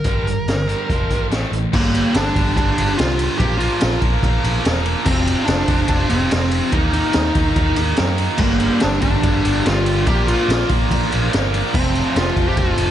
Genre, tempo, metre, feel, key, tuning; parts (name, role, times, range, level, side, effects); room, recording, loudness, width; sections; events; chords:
hard rock; 144 BPM; 4/4; straight; G minor; A4 = 440 Hz
high-gain lead guitar; melody; 0.0-12.9 s; Bb3 to Bb4; -22 LUFS; equal; distortion, tape echo
high-gain distorted guitar; riff; 0.0-12.9 s; F2 to Eb4; -27 LUFS; left 13 dB; distortion
tight distorted guitar; riff; 0.0-12.9 s; F2 to Eb4; -25 LUFS; right 12 dB; distortion
picked electric bass; bass; 0.0-12.9 s; E1 to F#2; -21 LUFS; equal
raw garage drum kit; drums; 0.0-12.9 s; crash cymbal, hi-hat, kick drum, ride cymbal, snare drum; -20 LUFS; equal
biting overdriven guitar; riff; 8.4-12.9 s; F2 to D4; -26 LUFS; left 1 dB
light reverb; nothing above 10.8 kHz; -15 LUFS; side -11 dB against mid
0.0-1.7 A section; 1.7-12.9 B section
0.0 Gm; 0.9 F5; 1.3 A5; 1.7 Gm; 3.4 Bb5; 5.1 F5; 6.7 Eb5; 8.4 Gm; 10.1 Bb; 11.7 F